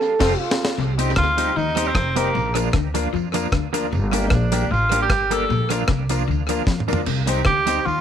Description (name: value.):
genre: ska.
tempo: 153 BPM.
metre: 4/4.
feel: swing 54% on 8ths.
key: Bb major.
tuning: A4 = 440 Hz.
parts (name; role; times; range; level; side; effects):
mellow trombone; melody; 0.0-0.8 s; F4 to A4; -25 LUFS; right 3 dB; tape echo.
semi-hollow electric guitar; accompaniment; 0.2-7.8 s; F3 to G4; -28 LUFS; right 11 dB; tremolo, tape echo.
clear upright piano; stabs; 0.2-7.8 s; Bb3 to C5; -27 LUFS; left 11 dB; none.
upright bass; bass; 0.2-8.0 s; F1 to F2; -24 LUFS; right 1 dB; none.
deep reggae drum kit; drums; 0.2-7.8 s; crash cymbal, hi-hat, kick drum, rim click, snare drum, toms; -24 LUFS; equal; tape echo.
clean electric guitar; riff; 0.8-8.0 s; F2 to F3; -28 LUFS; left 9 dB; analog chorus.
tambourine; percussion; 1.0-7.8 s; none; -39 LUFS; right 12 dB; tape echo.
warm tenor saxophone; melody; 1.2-8.0 s; Bb3 to A4; -21 LUFS; right 2 dB; none.
room: light reverb.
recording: 1960s-style stereo with parts hard left and right.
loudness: -18 LUFS.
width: side -9 dB against mid.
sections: 0.8-8.0 A section.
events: drum fill 0.0-0.8, 6.7-7.1; band accent 0.0-0.8.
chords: 0.0 F; 0.8 Cm; 2.3 Bb; 3.9 Gm; 5.5 Bb; 7.1 Cm.